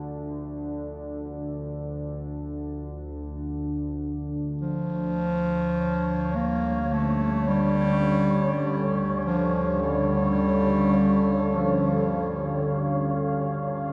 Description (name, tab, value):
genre	dark ambient drone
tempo	free time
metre	none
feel	none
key	unclear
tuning	A4 = 440 Hz
part	deep dark ambient pad	sustained chords	0.0-13.9 s	D3 to F5	-31 LUFS	equal	chorus, built-in reverb
part	analog drone	drone	0.0-13.9 s	D2 to D3	-35 LUFS	equal	chorus
part	mellow bass clarinet	melody	4.6-13.9 s	D3 to Bb3	-28 LUFS	equal	tape echo
part	wind-like tuned noise texture	texture	5.4-13.9 s	C#5	-33 LUFS	equal	built-in reverb
room	wet huge ambient reverb, RT60 7.0 s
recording	none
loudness	-26 LUFS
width	mono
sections	0.0-13.9 A section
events	fade-in on synth drone 0.0-13.9; fade-out 10.8-13.9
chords	0.0 Dm; 4.6 G7(no3)/D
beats	free time